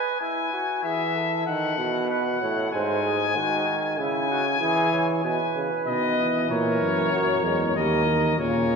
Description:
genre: classical, imitative canzona for brass ensemble.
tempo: 95 BPM.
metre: 4/4.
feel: straight.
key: unclear.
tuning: A4 = 441 Hz.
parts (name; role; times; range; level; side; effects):
clear trumpet; melody; 0.0-8.8 s; C#5 to G#5; -26 LUFS; left 6 dB; none.
warm flugelhorn; second line; 0.0-8.8 s; E4 to C#5; -28 LUFS; right 4 dB; none.
clear trombone; accompaniment; 0.8-8.8 s; G#2 to G#3; -26 LUFS; right 1 dB; none.
mellow bass trombone; bass; 5.9-8.8 s; D#2 to B2; -25 LUFS; right 1 dB; none.
room: wet church reverb, RT60 3.5 s.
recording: minimal, uncompressed stereo recording.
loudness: -22 LUFS.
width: side -5 dB against mid.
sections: 0.0-8.8 A section.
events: none.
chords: 0.2 Eadd9; 1.5 D#dim; 2.7 G#; 4.0 C#m; 5.2 G#m/B; 6.5 A#dim; 7.8 D#.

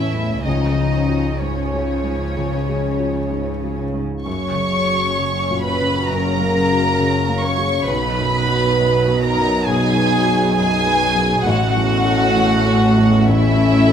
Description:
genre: cinematic.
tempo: 62-67 BPM.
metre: 4/4.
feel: rubato.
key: B major.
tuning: A4 = 440 Hz.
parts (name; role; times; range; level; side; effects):
warm studio violin section; melody; 0.0-13.9 s; C#5 to C#6; -22 LUFS; equal; none.
warm studio violin section; second line; 0.0-13.9 s; C#4 to C#5; -22 LUFS; right 1 dB; none.
felt-muted upright piano; accompaniment; 0.0-13.9 s; A1 to A4; -24 LUFS; right 1 dB; none.
warm chamber viola section; accompaniment; 0.0-13.9 s; E#3 to D#4; -26 LUFS; left 2 dB; none.
dark French horn section; sustained chords; 0.0-13.9 s; E3 to D#4; -26 LUFS; left 4 dB; none.
concert harp; arpeggios; 0.0-13.9 s; F#2 to D#5; -26 LUFS; left 8 dB; none.
dark studio cello section; bass; 0.0-13.9 s; F#2 to C#3; -24 LUFS; right 2 dB; none.
rich studio double bass section; bass; 0.0-13.9 s; F#1 to C#2; -24 LUFS; right 2 dB; none.
room: light reverb.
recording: close, detailed microphones.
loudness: -15 LUFS.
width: side -8 dB against mid.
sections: 0.0-13.9 A section.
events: none.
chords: 0.5 C#; 4.3 F#; 7.9 B; 11.5 A.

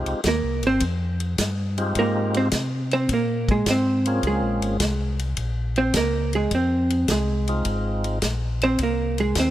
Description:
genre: soul jazz organ trio.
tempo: 105 BPM.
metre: 4/4.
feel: swing 69% on 8ths.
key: F minor.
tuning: A4 = 440 Hz.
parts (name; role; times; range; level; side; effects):
percussive tonewheel organ; melody; 0.0-8.2 s; Ab3 to Ab4; -29 LUFS; left 1 dB; slow rotary speaker.
mellow tonewheel organ; bass; 0.0-9.5 s; Ab1 to C3; -25 LUFS; left 1 dB; chorus vibrato, slow rotary speaker.
warm soul drum kit; drums; 0.1-9.5 s; hi-hat, kick drum, ride cymbal, snare drum; -28 LUFS; left 1 dB; none.
vintage hollow-body jazz guitar; accompaniment; 0.3-9.5 s; Ab3 to C5; -22 LUFS; right 2 dB; none.
room: little or no reverb.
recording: rough home demo mix.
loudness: -20 LUFS.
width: side -13 dB against mid.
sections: 0.0-9.5 A section.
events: hollow-body jazz guitar solo 0.0-9.5.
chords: 0.0 Fm9; 3.1 Bbm9; 7.6 Fm7.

